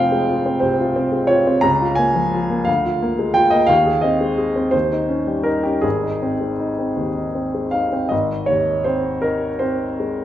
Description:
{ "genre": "classical, romantic character piece for solo piano", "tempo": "52-61 BPM (dotted quarters)", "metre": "6/8", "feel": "rubato", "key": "Ab major", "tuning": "A4 = 441 Hz", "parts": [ { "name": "warm upright piano", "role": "solo", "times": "0.0-10.2 s", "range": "F1 to Bb5", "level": "-16 LUFS", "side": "equal", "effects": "none" } ], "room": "moderate recital hall reverb, RT60 1.8 s", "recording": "none", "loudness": "-16 LUFS", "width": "side -12 dB against mid", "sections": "0.0-8.1 A section; 8.1-10.2 B section", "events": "none", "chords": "0.0 Fm; 1.6 Bbm7/Db; 2.7 Bb7/D; 3.7 Ab/Eb; 4.7 Eb7; 5.8 Ab", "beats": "0.62 | 1.64 2.68 | 3.70 4.74 | 5.84 6.97 | 8.12 9.24" }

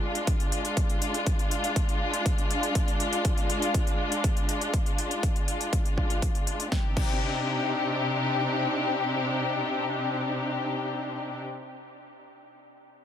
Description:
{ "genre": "progressive house", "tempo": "121 BPM", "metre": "4/4", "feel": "straight", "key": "C minor", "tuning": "A4 = 440 Hz", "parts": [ { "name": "dark studio string section", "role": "sustained chords", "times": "0.0-11.4 s", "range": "C3 to G4", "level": "-28 LUFS", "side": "left 1 dB", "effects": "sidechain pumping" }, { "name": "big-room dance drum kit", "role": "drums", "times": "0.2-7.1 s", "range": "crash cymbal, hi-hat, snare drum", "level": "-35 LUFS", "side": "left 2 dB", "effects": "overdrive" }, { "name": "electronic kick drum", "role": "drums", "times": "0.3-7.1 s", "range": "none", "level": "-26 LUFS", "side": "equal", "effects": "overdrive" } ], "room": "small room reverb", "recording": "dense, heavily limited modern master", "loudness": "-25 LUFS", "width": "side -9 dB against mid", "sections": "0.0-6.7 A section; 6.7-10.7 B section", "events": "none", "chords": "0.0 Ddim; 6.7 Cmadd9", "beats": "0.27 | 0.77 1.26 1.76 2.26 | 2.75 3.25 3.74 4.24 | 4.74 5.23 5.73 6.22 | 6.72 7.21 7.71 8.21 | 8.70 9.20 9.69 10.19" }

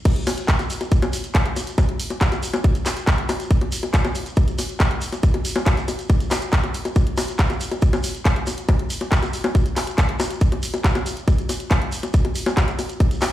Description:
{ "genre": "trance", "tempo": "139 BPM", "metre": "4/4", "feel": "straight", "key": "none", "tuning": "none", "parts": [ { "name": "electronic kick drum", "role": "drums", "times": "0.1-13.1 s", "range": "none", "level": "-17 LUFS", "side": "equal", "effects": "small room ambience" }, { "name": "garage drum kit", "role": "drums", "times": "0.1-13.3 s", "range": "bongos, crash cymbal, handclaps, hi-hat", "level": "-24 LUFS", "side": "left 1 dB", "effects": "small room ambience" }, { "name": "shekere", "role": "percussion", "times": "0.1-13.3 s", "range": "none", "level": "-35 LUFS", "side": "right 3 dB", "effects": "none" } ], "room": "light reverb", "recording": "played on a big sound system in a bare room, large studio reverb", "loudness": "-18 LUFS", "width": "side -14 dB against mid", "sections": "0.1-13.3 A section", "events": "drop 0.1-13.3", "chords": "none", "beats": "| 0.05 0.48 0.92 1.35 | 1.78 2.21 2.64 3.08 | 3.51 3.94 4.37 4.80 | 5.23 5.67 6.10 6.53 | 6.96 7.39 7.82 8.25 | 8.69 9.12 9.55 9.98 | 10.41 10.84 11.28 11.71 | 12.14 12.57 13.00" }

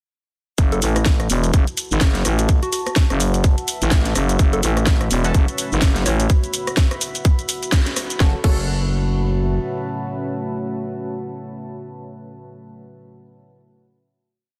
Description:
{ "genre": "bass house", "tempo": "126 BPM", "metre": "4/4", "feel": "swing 58% on 16ths", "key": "F# minor", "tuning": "A4 = 440 Hz", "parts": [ { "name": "growling FM bass", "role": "bass", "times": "0.6-9.6 s", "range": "E1 to A1", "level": "-22 LUFS", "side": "equal", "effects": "tube saturation, sidechain pumping" }, { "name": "electronic kick drum", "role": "drums", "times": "0.6-8.6 s", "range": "none", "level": "-18 LUFS", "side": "equal", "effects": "overdrive, small room ambience" }, { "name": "garage drum kit", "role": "drums", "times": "0.6-8.6 s", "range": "crash cymbal, hi-hat, rim click, shaker, snare drum", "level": "-26 LUFS", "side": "equal", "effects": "overdrive, small room ambience" }, { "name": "deep dark ambient pad", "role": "texture", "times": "1.7-11.9 s", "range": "F#4 to B5", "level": "-34 LUFS", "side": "equal", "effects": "chorus, built-in reverb, sidechain pumping" }, { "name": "soft struck synth lead", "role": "melody", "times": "0.7-6.3 s", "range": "E4 to C#5", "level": "-30 LUFS", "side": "equal", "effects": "chorus, tremolo, delay" }, { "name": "deep dark ambient pad", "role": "sustained chords", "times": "5.5-11.7 s", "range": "A3 to C#5", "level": "-33 LUFS", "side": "equal", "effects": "chorus, built-in reverb, sidechain pumping" }, { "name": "band-passed chord stab", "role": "stabs", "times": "5.2-5.3, 8.2-11.9 s", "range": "A3 to A4", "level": "-34 LUFS", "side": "equal", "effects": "phaser, lush chorus, sidechain pumping, delay" } ], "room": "light reverb, digital ambience", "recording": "dense, heavily limited modern master", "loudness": "-19 LUFS", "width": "mono", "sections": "0.6-8.2 drop; 8.2-12.0 final chord", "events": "drop 0.6-8.2; band accent 7.7", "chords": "0.6 F#m", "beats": "| 0.58 1.06 1.53 2.01 | 2.49 2.96 3.44 3.92 | 4.39 4.87 5.34 5.82 | 6.30 6.77 7.25 7.73 | 8.20 8.68 9.15 9.63 | 10.11 10.58 11.06 11.54" }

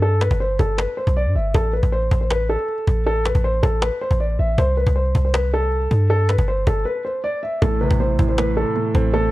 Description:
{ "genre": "hip hop, trap", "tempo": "158 BPM", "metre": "4/4", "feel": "half-time", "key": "A minor", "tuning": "A4 = 440 Hz", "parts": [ { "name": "dark concert grand piano", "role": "melody", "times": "0.0-9.3 s", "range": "A4 to E5", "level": "-22 LUFS", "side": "equal", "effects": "none" }, { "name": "warm 808-style bass", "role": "bass", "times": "0.0-9.3 s", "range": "G1 to G2", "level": "-19 LUFS", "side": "equal", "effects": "none" }, { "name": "cajon", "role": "drums", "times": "0.2-9.3 s", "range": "none", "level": "-24 LUFS", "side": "equal", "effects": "none" }, { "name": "dark baby grand piano", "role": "accompaniment", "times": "7.6-9.3 s", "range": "A2 to C4", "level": "-22 LUFS", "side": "right 2 dB", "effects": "none" } ], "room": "little or no reverb", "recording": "worn, warbling old tape, cassette tape, warbly pitch drift", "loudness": "-17 LUFS", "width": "side -17 dB against mid", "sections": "0.0-7.6 A section; 7.6-9.3 B section", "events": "break 0.0-1.5, 6.9-7.6", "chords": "0.0 G; 1.5 Amadd9; 4.6 C5; 6.1 Gadd9; 7.6 Am", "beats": "| 0.03 0.41 0.78 1.16 | 1.54 1.92 2.30 2.68 | 3.06 3.44 3.82 4.20 | 4.58 4.96 5.34 5.72 | 6.10 6.48 6.86 7.24 | 7.62 8.00 8.38 8.76 | 9.14" }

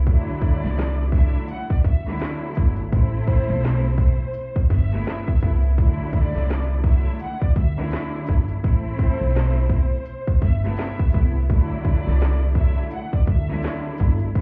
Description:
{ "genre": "hip hop, boom-bap hip-hop", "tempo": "84 BPM", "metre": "4/4", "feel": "swing 58% on 16ths", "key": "unclear", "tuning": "A4 = 444 Hz", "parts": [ { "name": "warm symphonic string section", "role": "accompaniment", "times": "0.0-14.4 s", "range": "C3 to E4", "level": "-32 LUFS", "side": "equal", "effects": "high-pass filter, low-pass filter" }, { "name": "upright bass", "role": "bass", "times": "0.0-14.4 s", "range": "G1 to D2", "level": "-24 LUFS", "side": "equal", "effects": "none" }, { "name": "garage drum kit", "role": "drums", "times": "0.1-14.4 s", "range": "hi-hat, kick drum, rim click, snare drum", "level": "-23 LUFS", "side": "equal", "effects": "none" }, { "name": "rich studio violin section", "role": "melody", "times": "0.4-13.6 s", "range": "C5 to F#5", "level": "-36 LUFS", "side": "equal", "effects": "high-pass filter, low-pass filter" }, { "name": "tonewheel organ", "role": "sustained chords", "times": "11.5-14.4 s", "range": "E3 to A4", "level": "-41 LUFS", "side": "equal", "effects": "none" } ], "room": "little or no reverb", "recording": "heard muffled through a wall, club reverb, vinyl crackle, EQ", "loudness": "-21 LUFS", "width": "mono", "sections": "0.1-14.4 A section", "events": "none", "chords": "0.1 Dadd9; 2.9 Amadd9; 5.8 Dadd9; 8.6 Amadd9; 11.5 Dadd9", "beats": "| 0.07 0.78 1.50 2.21 | 2.93 3.64 4.36 5.07 | 5.78 6.50 7.21 7.93 | 8.64 9.36 10.07 10.78 | 11.50 12.21 12.93 13.64 | 14.36" }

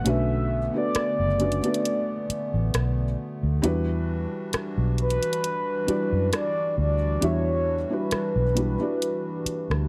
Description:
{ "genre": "contemporary R&B", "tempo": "67 BPM", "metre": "4/4", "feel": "swing 54% on 16ths", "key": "unclear", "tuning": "A4 = 440 Hz", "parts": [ { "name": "mellow horn-like synth lead", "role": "melody", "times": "0.0-9.9 s", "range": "B4 to F#5", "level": "-30 LUFS", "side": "equal", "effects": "chorus" }, { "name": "felt-muted upright piano", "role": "accompaniment", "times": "0.0-9.9 s", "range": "G3 to E5", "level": "-32 LUFS", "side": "equal", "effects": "none" }, { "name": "hollow soft pad", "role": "sustained chords", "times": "0.0-9.9 s", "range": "D3 to F#4", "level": "-36 LUFS", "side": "equal", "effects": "chorus, tremolo" }, { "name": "downlifter", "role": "sound effects", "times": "0.0-3.6 s", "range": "none", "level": "-56 LUFS", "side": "equal", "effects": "none" }, { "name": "vintage muted fingered electric bass", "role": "bass", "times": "0.1-9.9 s", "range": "F#1 to F#2", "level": "-27 LUFS", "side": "equal", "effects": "none" }, { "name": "smooth R&B drum kit", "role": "drums", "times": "0.1-9.9 s", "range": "hi-hat, rim click", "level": "-32 LUFS", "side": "equal", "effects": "none" } ], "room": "little or no reverb", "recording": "dry, gritty hardware recording", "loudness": "-25 LUFS", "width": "mono", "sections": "0.0-9.9 A section", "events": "break 0.0-9.9; felt piano fill 9.5-9.9", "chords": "0.0 Bm9; 3.6 Em9", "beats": "| 0.06 0.95 1.85 2.75 | 3.64 4.54 5.43 6.33 | 7.22 8.12 9.01" }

